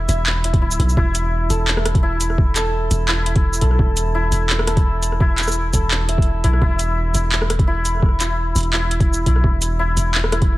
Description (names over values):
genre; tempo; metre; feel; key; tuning
half-time drum and bass; 170 BPM; 4/4; swing 54% on 16ths, half-time; unclear; A4 = 440 Hz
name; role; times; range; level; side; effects
santur; arpeggios; 0.0-10.6 s; E4 to E5; -23 LUFS; left 1 dB; tape echo
long sustained 808-style bass; bass; 0.0-10.6 s; D1 to B1; -20 LUFS; equal; tube saturation
drum and bass drum kit; drums; 0.1-10.5 s; handclaps, hi-hat, rim click, shaker; -22 LUFS; equal; none
electronic kick drum; drums; 0.5-10.5 s; none; -16 LUFS; equal; overdrive
room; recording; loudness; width
little or no reverb; none; -16 LUFS; side -17 dB against mid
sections
0.0-10.6 A section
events
none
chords
none